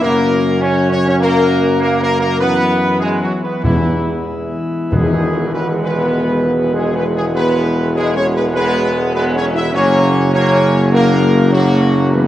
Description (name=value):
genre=classical, ceremonial fanfare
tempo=100 BPM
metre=4/4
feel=straight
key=E lydian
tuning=A4 = 440 Hz
part: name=dark trumpet section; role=melody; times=0.0-12.3 s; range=E4 to E5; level=-20 LUFS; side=equal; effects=none
part: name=chamber organ, principal chorus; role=sustained chords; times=0.0-12.3 s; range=C#3 to F#4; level=-20 LUFS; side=left 1 dB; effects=none
part: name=dark French horn section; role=sustained chords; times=0.0-12.3 s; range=E3 to E4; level=-20 LUFS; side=left 2 dB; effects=none
part: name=warm trombone section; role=sustained chords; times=0.0-12.3 s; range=E3 to C#4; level=-21 LUFS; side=right 2 dB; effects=none
part: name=warm tuba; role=bass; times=0.0-12.3 s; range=E1 to F#2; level=-17 LUFS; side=right 1 dB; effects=none
part: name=timpani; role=percussion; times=3.6-5.8 s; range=E2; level=-19 LUFS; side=equal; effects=none
part: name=tam-tam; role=percussion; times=4.9-7.3 s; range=none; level=-28 LUFS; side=left 2 dB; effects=none
room=wet scoring stage reverb, RT60 1.9 s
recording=worn, warbling old tape, cassette tape, warbly pitch drift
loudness=-12 LUFS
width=side -13 dB against mid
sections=0.0-4.9 A section; 4.9-12.3 B section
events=band accent 4.9-5.5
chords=0.0 F#; 2.4 Bsus4/F#; 3.7 E; 4.9 Eadd9; 9.7 F#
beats=| 0.03 0.62 1.22 1.81 | 2.41 3.02 3.65 4.29 | 4.93 5.54 6.14 6.74 | 7.35 7.96 8.55 9.15 | 9.75 10.34 10.93 11.53 | 12.15